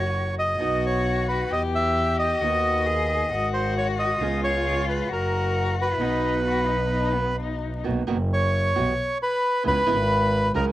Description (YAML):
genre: tango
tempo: 133 BPM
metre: 4/4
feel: rubato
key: B major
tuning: A4 = 440 Hz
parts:
  - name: bandoneon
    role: melody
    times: 0.0-10.7 s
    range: A#4 to E5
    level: -24 LUFS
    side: equal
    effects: none
  - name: warm cello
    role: second line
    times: 0.0-7.8 s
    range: B3 to G#4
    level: -29 LUFS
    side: left 6 dB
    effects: none
  - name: nylon-string guitar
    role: accompaniment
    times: 0.0-10.7 s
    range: B2 to A#4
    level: -30 LUFS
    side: right 5 dB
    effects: none
  - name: warm double bass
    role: bass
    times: 0.0-10.7 s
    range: F#1 to E2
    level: -26 LUFS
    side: equal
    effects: none
room: light reverb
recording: home recording on cassette, vinyl crackle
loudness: -21 LUFS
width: side -15 dB against mid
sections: 0.0-7.8 A section; 7.8-10.7 B section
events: none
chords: 0.0 F#; 0.6 B; 1.5 Em; 2.4 Bmaj7/D#; 3.3 G#7; 4.2 C#7; 5.1 F#; 6.0 B; 7.8 Bmaj7; 8.8 Emadd9/B; 9.7 C#m7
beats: 0.15 | 0.61 1.06 1.51 1.97 | 2.42 2.87 3.31 3.76 | 4.21 4.65 5.10 5.55 | 6.00 6.46 6.92 7.38 | 7.84 8.30 8.75 9.20 | 9.65 10.10 10.55